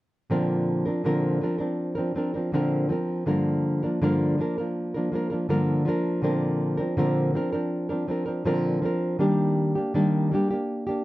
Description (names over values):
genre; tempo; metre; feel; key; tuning
pop; 81 BPM; 4/4; straight; Bb major; A4 = 440 Hz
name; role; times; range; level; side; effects
nylon-string guitar; accompaniment; 0.3-11.0 s; G2 to Bb4; -23 LUFS; equal; none
room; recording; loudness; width
moderate studio reverb, RT60 0.5 s; worn, warbling old tape, cassette tape, warbly pitch drift; -23 LUFS; side -17 dB against mid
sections
0.3-11.0 A section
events
none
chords
0.3 Bbadd9; 3.3 Gm7; 6.2 Bbadd9; 9.2 Ebmaj7